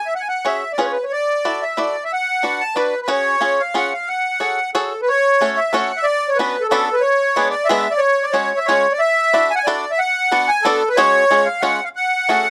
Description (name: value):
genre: musette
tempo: 183 BPM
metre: 3/4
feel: straight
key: F# minor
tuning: A4 = 440 Hz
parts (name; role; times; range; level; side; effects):
- accordion; melody; 0.0-12.5 s; A4 to A5; -18 LUFS; equal; light tremolo tuning
- bluegrass banjo; accompaniment; 0.4-12.5 s; G#3 to D5; -22 LUFS; equal; none
room: light reverb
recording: close, detailed microphones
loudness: -18 LUFS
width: mono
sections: 0.0-5.1 A section; 5.1-12.5 A section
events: none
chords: 0.1 C#sus4; 0.8 C#; 1.1 Dadd9; 2.1 Bm; 3.1 C#sus4; 3.4 C#; 4.1 F#madd9; 5.1 F#m; 6.1 Bmadd9; 7.0 G#dim; 8.0 C#sus4; 8.7 C#; 9.0 Dadd9; 10.0 Bm; 11.0 C#sus4; 11.3 C#; 11.9 F#madd9